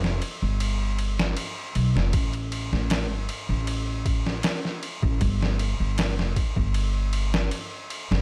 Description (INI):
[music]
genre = trip hop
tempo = 78 BPM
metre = 4/4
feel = straight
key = unclear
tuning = A4 = 444 Hz
[part]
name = upright bass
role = bass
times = 0.0-8.2 s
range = F1 to B1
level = -28 LUFS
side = equal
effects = none
[part]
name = trip hop sampler-style drum kit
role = drums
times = 0.0-8.2 s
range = kick drum, ride cymbal, snare drum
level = -30 LUFS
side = equal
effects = none
[sound]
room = little or no reverb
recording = none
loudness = -26 LUFS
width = mono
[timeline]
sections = 0.0-8.2 A section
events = none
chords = none